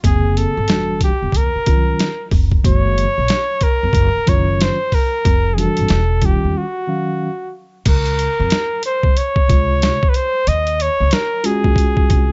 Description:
hip hop, jazz-hop; 92 BPM; 4/4; swing 62% on 16ths; Eb dorian; A4 = 440 Hz
mellow tine electric piano; accompaniment; 0.0-12.3 s; C3 to F5; -23 LUFS; equal
upright bass; bass; 0.0-12.3 s; E1 to F2; -21 LUFS; equal
boom bap sampler-style drum kit; drums; 0.0-12.3 s; crash cymbal, hi-hat, kick drum, snare drum; -19 LUFS; equal
breathy flugelhorn; melody; 0.1-12.3 s; Gb4 to Eb5; -22 LUFS; equal
little or no reverb; dark, warm production, nothing above 7.8 kHz; -16 LUFS; mono
0.0-7.9 A section; 7.9-12.3 B section
break 6.6-7.9
0.0 Bbm9/F; 0.7 Em9; 1.3 Ebm9; 2.6 Gb69; 3.9 Ebm9/Gb; 5.3 Fmaj13; 5.9 Em; 6.6 Ebm9; 7.9 Dbmaj7; 10.5 Ebm11

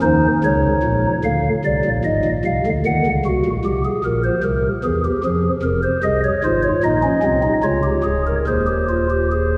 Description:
classical, baroque-style 3-part fugue for pipe organ; 75 BPM; 3/4; straight; Ab major from 6.0 s; A4 = 440 Hz
pipe organ, stopped flute; solo; 0.0-9.6 s; Db1 to Gb5; -18 LUFS; equal
wet cathedral reverb, RT60 4.3 s; -18 LUFS; mono
0.0-1.2 A section; 1.2-9.6 B section
0.4 Bbmadd11; 1.2 Bb7; 2.8 Ebm; 3.6 C7; 5.2 Fm; 6.0 Ab; 7.6 Db; 8.5 Ab/Eb

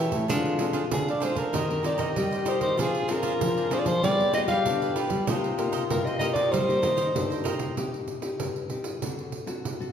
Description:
samba and choro; 96 BPM; 4/4; straight; C minor; A4 = 439 Hz
mellow trombone; second line; 0.0-7.7 s; Eb4 to G4; -32 LUFS; left 7 dB
cavaquinho; accompaniment; 0.0-7.8 s; D4 to F5; -34 LUFS; right 4 dB
nylon-string guitar; accompaniment; 0.0-9.9 s; G2 to Bb4; -33 LUFS; left 4 dB
nylon-string guitar; bass; 0.0-7.7 s; A2 to G3; -30 LUFS; equal
pandeiro; percussion; 0.1-9.9 s; -32 LUFS; right 4 dB
growling soprano saxophone; melody; 0.9-7.5 s; Ab4 to F5; -27 LUFS; equal
wet recital hall reverb, RT60 1.9 s; recorded in a church or concert hall; -24 LUFS; side -8 dB against mid
0.0-7.8 A section; 7.8-9.9 B section
0.3 Dm7b5; 1.5 Cm7/Eb; 2.8 Dm7b5/F; 4.0 G7b9; 5.3 Cm7; 7.8 Cm; 9.0 D7

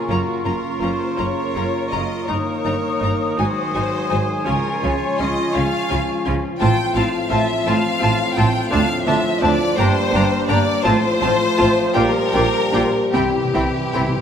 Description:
classical, slow romantic movement for symphony orchestra; 50-58 BPM (dotted quarters); 6/8; rubato; Db major, F major from 6.6 s; A4 = 437 Hz
bright clarinet; second line; 0.0-14.1 s; D4 to Gb4; -28 LUFS; left 1 dB
mellow cor anglais; second line; 0.0-14.1 s; Bb4 to A5; -28 LUFS; right 2 dB
mellow flute section; second line; 0.0-14.0 s; Bb5 to Eb6; -30 LUFS; left 3 dB
rich studio violin section; second line; 0.0-14.2 s; Gb4 to G5; -23 LUFS; left 3 dB
bright trombone section; sustained chords; 0.0-14.2 s; G2 to Bb3; -27 LUFS; right 4 dB
dark French horn section; sustained chords; 0.0-14.2 s; G3 to G4; -25 LUFS; left 3 dB
rich studio violin section; melody; 0.1-14.0 s; G5 to Bb5; -29 LUFS; left 5 dB
rich studio viola section; accompaniment; 0.1-14.0 s; Bb3 to Gb4; -28 LUFS; equal
rich studio cello section; bass; 0.1-14.0 s; D2 to Db3; -25 LUFS; right 2 dB
warm studio double bass section; bass; 0.1-14.0 s; Gb1 to D2; -25 LUFS; right 3 dB
timpani; percussion; 13.1-14.2 s; C3; -26 LUFS; equal
wet concert hall reverb, RT60 2.1 s; -16 LUFS; side -8 dB against mid
0.0-14.2 A section
timpani fill 13.1-14.2
0.1 Gbmaj7; 2.3 Eb7/G; 3.4 Ab7; 4.5 Db; 6.6 F/A; 8.7 Dm7; 9.8 Gm; 10.9 F/A; 12.0 Gm7/Bb; 13.1 C

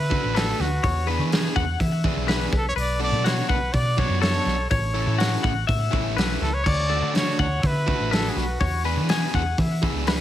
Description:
math rock and midwest emo; 123 BPM; 4/4; straight; A4 = 438 Hz
breathy trumpet; melody; 0.0-8.9 s; F#4 to D5; -27 LUFS; right 1 dB
twelve-string electric guitar; arpeggios; 0.0-10.2 s; F#4 to F#5; -29 LUFS; left 8 dB; analog delay
hollow-body short-scale fingered electric bass; bass; 0.0-10.2 s; A1 to E3; -25 LUFS; equal
overdriven electric guitar; riff; 0.1-10.2 s; D3 to G#4; -28 LUFS; right 1 dB
loose indie drum kit; drums; 0.1-10.2 s; crash cymbal, hi-hat, kick drum, snare drum; -26 LUFS; equal
light reverb; -20 LUFS; side -12 dB against mid
0.0-10.2 A section
0.0 Dadd9; 0.8 E13; 2.5 Bm7; 4.7 A; 6.7 Dmaj9; 8.6 E13

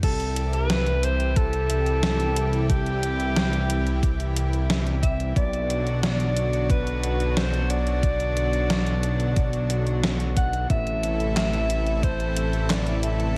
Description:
synthwave; 90 BPM; 4/4; straight; A4 = 439 Hz
clear alto saxophone; melody; 0.0-13.4 s; G4 to F#5; -31 LUFS; equal; diffuse ambient delay
lush unison pad; sustained chords; 0.0-13.4 s; B2 to A4; -33 LUFS; equal; chorus, vintage 12-bit sampler grit, sidechain pumping
fat analog bass; bass; 0.0-13.4 s; A1 to C2; -27 LUFS; equal; sidechain pumping
electronic kick drum; drums; 0.0-12.2 s; -26 LUFS; equal; overdrive
gated 80s digital drum machine; drums; 0.0-13.3 s; crash cymbal, handclaps, hi-hat, snare drum; -30 LUFS; equal; gated reverb, gated reverb snare, overdrive
moderate plate reverb, RT60 1.6 s, digital ambience; dreamy mix soaked in reverb; -24 LUFS; mono
0.0-13.4 A section
0.0 C; 5.4 Bm; 10.7 Am

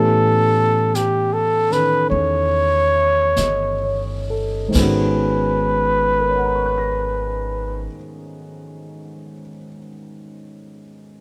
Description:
jazz; 41-56 BPM; 4/4; swing 69% on 8ths; G# minor; A4 = 440 Hz
breathy trumpet; melody; 0.0-7.9 s; G4 to C#5; -20 LUFS; equal; plate reverb
dark grand piano; accompaniment; 0.0-11.2 s; G#2 to A#6; -26 LUFS; equal
upright bass; bass; 0.0-7.9 s; G1 to A2; -27 LUFS; equal
jazz brush drum kit; drums; 0.9-5.4 s; brushed snare drum, crash cymbal, hi-hat, kick drum, snare drum; -26 LUFS; equal
light reverb; -18 LUFS; mono
0.0-4.8 A section; 4.8-10.5 B section
slowing down 0.0-4.8
0.0 A7; 4.8 G#m11

